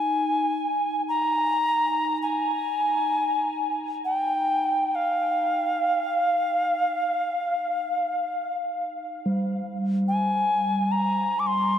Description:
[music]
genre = world meditative, free-time meditation music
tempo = free time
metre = none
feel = none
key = unclear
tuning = A4 = 441 Hz
[part]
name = bright reedy alto ocarina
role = melody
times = 0.0-11.8 s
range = F5 to D6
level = -23 LUFS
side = equal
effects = analog delay
[part]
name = bronze singing bowl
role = texture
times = 0.0-11.8 s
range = G3 to Eb4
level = -30 LUFS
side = right 1 dB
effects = none
[sound]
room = wet huge ambient reverb, RT60 7.6 s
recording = in a vast, echoing space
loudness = -22 LUFS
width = side -9 dB against mid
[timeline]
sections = 0.0-9.2 A section; 9.2-11.8 A section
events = none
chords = none

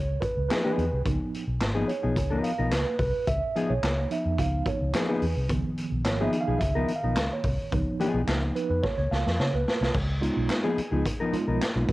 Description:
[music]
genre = funk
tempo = 108 BPM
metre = 4/4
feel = straight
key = Db mixolydian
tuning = A4 = 438 Hz
[part]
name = mellow tine electric piano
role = stabs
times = 0.0-11.9 s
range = Eb3 to F5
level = -30 LUFS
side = right 3 dB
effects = medium stereo tremolo, cassette tape
[part]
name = vintage muted fingered electric bass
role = bass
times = 0.0-11.9 s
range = Ab1 to Db3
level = -28 LUFS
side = equal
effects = none
[part]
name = raw garage drum kit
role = drums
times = 0.2-11.9 s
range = crash cymbal, handclaps, hi-hat, kick drum, snare drum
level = -30 LUFS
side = equal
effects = none
[part]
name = mellow electric guitar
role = accompaniment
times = 0.5-11.6 s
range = F3 to Bb4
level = -29 LUFS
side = left 3 dB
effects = cassette tape
[sound]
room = light reverb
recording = home recording on cassette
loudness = -24 LUFS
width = side -18 dB against mid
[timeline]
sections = 0.0-9.9 A section; 9.9-11.9 B section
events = tine electric piano solo 0.0-9.9; drum fill 8.8-9.9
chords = 0.0 Db9

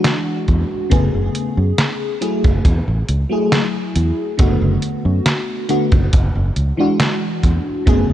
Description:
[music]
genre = vaporwave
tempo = 69 BPM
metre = 4/4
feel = straight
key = unclear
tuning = A4 = 440 Hz
[part]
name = FM electric piano with soft pad layer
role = accompaniment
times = 0.0-8.1 s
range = C#3 to G#4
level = -19 LUFS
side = left 1 dB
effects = tremolo, analog chorus, tape echo
[part]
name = detuned 8-bit digital drum machine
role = drums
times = 0.0-8.1 s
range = hi-hat, snare drum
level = -20 LUFS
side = right 1 dB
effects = none
[part]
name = fingered electric bass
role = bass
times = 0.5-8.1 s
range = F#1 to F#2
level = -17 LUFS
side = equal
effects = none
[part]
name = kick drum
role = drums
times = 0.5-8.1 s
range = none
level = -17 LUFS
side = equal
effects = none
[sound]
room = light reverb, small room ambience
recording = cassette tape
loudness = -15 LUFS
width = side -12 dB against mid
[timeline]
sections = 0.0-8.1 A section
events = none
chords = 0.0 E9; 0.9 Amaj9/F#; 2.2 F#m9; 4.4 Bm7/F#; 6.1 E9/F#

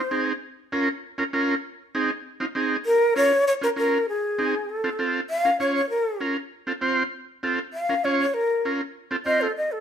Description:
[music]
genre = latin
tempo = 197 BPM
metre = 4/4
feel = straight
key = Bb minor, Bb harmonic minor from 5.3 s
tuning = A4 = 440 Hz
[part]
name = breathy shakuhachi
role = melody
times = 0.0-0.2, 2.9-9.8 s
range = Ab4 to F5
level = -22 LUFS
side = left 1 dB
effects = none
[part]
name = combo organ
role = accompaniment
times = 0.1-9.5 s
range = C4 to Db5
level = -25 LUFS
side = right 2 dB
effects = none
[sound]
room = moderate stone room reverb, RT60 1.0 s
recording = band playing live in one room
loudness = -22 LUFS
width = side -8 dB against mid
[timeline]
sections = 0.0-5.3 A section; 5.3-9.8 B section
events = shakuhachi solo 5.3-9.8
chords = 0.4 Bbm; 1.6 Ab; 2.9 Bbm; 4.1 Ab; 4.7 F; 5.3 Bbm; 6.5 F; 7.7 Bbm; 9.0 F

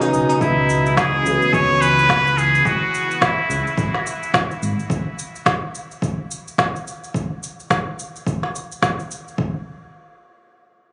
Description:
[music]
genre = organic downtempo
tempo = 107 BPM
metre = 4/4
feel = swing 59% on 16ths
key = C# minor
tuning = A4 = 440 Hz
[part]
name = felt-muted upright piano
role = accompaniment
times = 0.0-2.7 s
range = C#3 to G#4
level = -25 LUFS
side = equal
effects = sidechain pumping, delay, shimmer reverb
[part]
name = warbly tape-like pad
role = sustained chords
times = 0.0-4.9 s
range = B2 to F#4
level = -33 LUFS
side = equal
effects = none
[part]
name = steel-string zither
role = arpeggios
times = 0.0-3.0 s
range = C#4 to C#5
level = -29 LUFS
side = equal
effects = vintage 12-bit sampler grit, delay, shimmer reverb
[part]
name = organic electronic drum kit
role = drums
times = 0.0-9.4 s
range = hi-hat, shaker, snare drum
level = -25 LUFS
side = equal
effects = overdrive
[part]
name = smooth synth bass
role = bass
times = 0.1-4.7 s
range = G#1 to C#2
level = -25 LUFS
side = equal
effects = sidechain pumping
[part]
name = trumpet with straight mute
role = melody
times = 0.4-3.8 s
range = E4 to C#5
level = -21 LUFS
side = equal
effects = delay, shimmer reverb
[part]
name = electronic kick drum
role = drums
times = 0.4-9.5 s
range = none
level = -28 LUFS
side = equal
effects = overdrive
[sound]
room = moderate huge ambient reverb, RT60 4.5 s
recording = recorded on a phone in the room, club reverb, compression, nothing above 10.8 kHz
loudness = -20 LUFS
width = mono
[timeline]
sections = 0.4-9.4 A section; 9.4-10.9 B section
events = none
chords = 0.4 C#m7; 4.9 N.C.

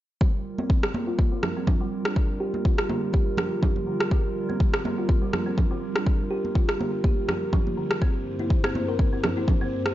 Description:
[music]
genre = afro house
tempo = 123 BPM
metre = 4/4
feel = swing 55% on 16ths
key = G dorian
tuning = A4 = 438 Hz
[part]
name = dark analog pad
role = sustained chords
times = 0.2-9.9 s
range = G2 to C5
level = -33 LUFS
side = right 1 dB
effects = chorus, sidechain pumping
[part]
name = buzzing kalimba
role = arpeggios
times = 0.2-9.9 s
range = D3 to Bb4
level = -30 LUFS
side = equal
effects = sidechain pumping, low-pass filter, tape echo
[part]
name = electronic kick drum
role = drums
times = 0.2-9.6 s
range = none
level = -22 LUFS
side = equal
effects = overdrive, studio reverb
[part]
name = congas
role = percussion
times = 0.6-9.6 s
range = none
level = -32 LUFS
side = right 2 dB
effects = none
[part]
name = electronic rim click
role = drums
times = 0.8-9.9 s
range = none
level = -28 LUFS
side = equal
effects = overdrive, studio reverb
[sound]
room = light reverb, small room ambience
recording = nothing above 7.5 kHz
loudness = -22 LUFS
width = side -14 dB against mid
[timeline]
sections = 0.2-9.9 A section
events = filter sweep on kalimba 0.2-9.9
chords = 0.2 Gm7; 8.0 C7/G

